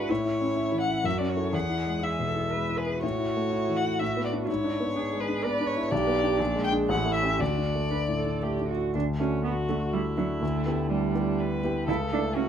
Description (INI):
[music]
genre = quick classical-period movement for piano trio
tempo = 123 BPM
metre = 3/4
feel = rubato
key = D major from 5.9 s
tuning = A4 = 440 Hz
[part]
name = muted violin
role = melody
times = 0.0-12.5 s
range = D4 to G5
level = -31 LUFS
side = left 3 dB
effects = none
[part]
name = muted cello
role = second line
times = 0.0-12.4 s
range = F#3 to B4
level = -32 LUFS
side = right 9 dB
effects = none
[part]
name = warm concert grand piano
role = accompaniment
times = 0.0-12.5 s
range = A1 to B4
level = -27 LUFS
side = left 1 dB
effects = none
[sound]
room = light reverb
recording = none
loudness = -25 LUFS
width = side -8 dB against mid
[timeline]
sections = 0.0-8.9 A section; 8.9-12.5 B section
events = none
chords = 0.1 A; 1.1 F#m7; 1.5 E; 3.0 A; 4.0 Bm7/A; 4.5 E7/G#; 5.9 G/B; 6.4 Bb7; 6.9 A7; 7.4 D; 10.4 Em7/D; 11.9 A/C#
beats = | 0.09 0.57 1.05 | 1.54 2.03 2.52 | 3.03 3.52 4.01 | 4.48 4.96 5.44 | 5.92 6.39 6.89 | 7.40 7.92 8.43 | 8.94 9.44 9.93 | 10.42 10.91 11.39 | 11.88 12.36